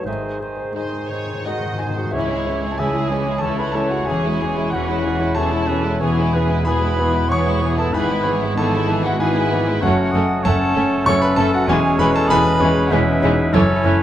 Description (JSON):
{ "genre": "classical", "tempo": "82-99 BPM", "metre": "3/4", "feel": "rubato", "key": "C# minor", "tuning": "A4 = 439 Hz", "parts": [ { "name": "clear grand piano", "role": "melody", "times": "0.0-14.0 s", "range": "E1 to C#6", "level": "-20 LUFS", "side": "left 2 dB", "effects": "none" }, { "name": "silver concert flute", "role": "second line", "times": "0.0-14.0 s", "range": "C#5 to C#6", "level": "-28 LUFS", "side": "left 2 dB", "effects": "none" }, { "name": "warm clarinet", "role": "second line", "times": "0.0-14.0 s", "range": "C#4 to G#4", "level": "-27 LUFS", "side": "equal", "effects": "none" }, { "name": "warm oboe", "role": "second line", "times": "0.0-14.0 s", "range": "G#4 to E5", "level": "-28 LUFS", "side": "right 3 dB", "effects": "none" }, { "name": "warm bassoon", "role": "accompaniment", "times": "0.0-14.0 s", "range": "D#3 to C#4", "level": "-29 LUFS", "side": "right 3 dB", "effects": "none" }, { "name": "mellow French horn section", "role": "sustained chords", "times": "0.0-14.0 s", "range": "G#3 to B#4", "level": "-29 LUFS", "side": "left 3 dB", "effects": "none" }, { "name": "dark symphonic double bass section", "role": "bass", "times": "0.1-13.9 s", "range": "E1 to C#2", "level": "-28 LUFS", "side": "right 3 dB", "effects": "none" }, { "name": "warm symphonic cello section", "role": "bass", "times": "0.1-13.9 s", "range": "C#2 to G#2", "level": "-27 LUFS", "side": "right 2 dB", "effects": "none" }, { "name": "timpani", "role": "percussion", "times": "0.1-3.1 s", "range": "G#2 to C#3", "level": "-31 LUFS", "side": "left 1 dB", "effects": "none" }, { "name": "warm symphonic violin section", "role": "melody", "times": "0.8-13.9 s", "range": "C#4 to D#5", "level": "-31 LUFS", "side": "left 3 dB", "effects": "none" }, { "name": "warm symphonic violin section", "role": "second line", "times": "0.8-14.0 s", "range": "G#3 to E4", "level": "-29 LUFS", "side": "left 2 dB", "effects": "none" }, { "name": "warm symphonic viola section", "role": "accompaniment", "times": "0.8-13.9 s", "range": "E3 to A3", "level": "-28 LUFS", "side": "right 2 dB", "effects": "none" }, { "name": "warm trumpet", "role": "stabs", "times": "1.5-14.0 s", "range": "C#4 to C#5", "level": "-27 LUFS", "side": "right 2 dB", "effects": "none" } ], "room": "moderate recital hall reverb, RT60 1.5 s", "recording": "close, detailed microphones", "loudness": "-16 LUFS", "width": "side -11 dB against mid", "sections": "0.0-2.2 A section; 2.2-14.0 B section", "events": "timpani fill 0.1-2.2", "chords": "0.1 G#; 2.2 C#m; 4.1 C#m/E; 6.0 E; 7.9 E/G#; 9.8 F#m; 11.7 C#m/E" }